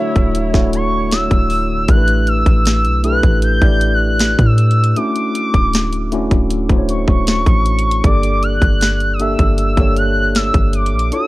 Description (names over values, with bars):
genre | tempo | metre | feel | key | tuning
contemporary R&B | 78 BPM | 4/4 | straight | D major | A4 = 440 Hz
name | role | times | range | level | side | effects
gliding portamento lead | melody | 0.0-11.3 s | E5 to G6 | -19 LUFS | equal | chorus
mellow tine electric piano | accompaniment | 0.0-11.3 s | A3 to E5 | -20 LUFS | left 1 dB | fast stereo tremolo
hollow soft pad | sustained chords | 0.0-1.9 s | D3 to C#5 | -30 LUFS | equal | ensemble chorus, sidechain pumping
soft 808-style bass | bass | 0.2-11.1 s | D1 to A2 | -16 LUFS | equal | none
trap drum kit | drums | 0.2-11.3 s | hi-hat, kick drum, snare drum | -15 LUFS | equal | none
room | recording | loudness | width
digital ambience | dry, gritty hardware recording, cassette tape | -12 LUFS | side -18 dB against mid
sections
0.0-1.9 A section; 1.9-11.3 A section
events
none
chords
0.0 Dmaj9; 1.9 A9sus4; 5.0 Dmaj9; 8.0 Gmadd9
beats
0.35 1.12 | 1.89 2.65 3.42 4.19 | 4.96 5.73 6.50 7.27 | 8.04 8.81 9.58 10.35 | 11.12